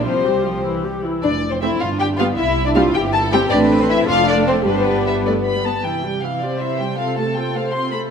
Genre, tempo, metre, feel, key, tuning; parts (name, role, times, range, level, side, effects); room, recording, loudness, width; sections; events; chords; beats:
quick classical-period movement for string orchestra; 104 BPM (dotted quarters); 6/8; uneven beats, rubato; C major; A4 = 441 Hz
warm studio violin section; melody; 0.0-8.0 s; B4 to C6; -22 LUFS; left 4 dB
warm studio violin section; second line; 0.0-8.1 s; B3 to C5; -21 LUFS; left 2 dB
warm chamber viola section; accompaniment; 0.0-8.1 s; E3 to A4; -22 LUFS; right 1 dB
rich studio double bass section; bass; 0.0-5.7 s; F1 to C2; -25 LUFS; right 3 dB
warm chamber cello section; bass; 0.0-8.1 s; C3 to B4; -25 LUFS; right 1 dB
wet scoring stage reverb, RT60 2.0 s; -16 LUFS; side -6 dB against mid
0.0-5.9 A section; 5.9-8.1 B section
0.1 Csus4; 0.7 C; 1.2 F; 1.8 G; 2.4 C; 3.5 Am; 4.1 Dm/F; 4.7 G; 5.9 C; 7.0 F/C
| 0.06 0.65 | 1.24 1.82 | 2.39 2.96 | 3.52 4.09 | 4.67 5.26 | 5.86 6.42 | 6.99 7.56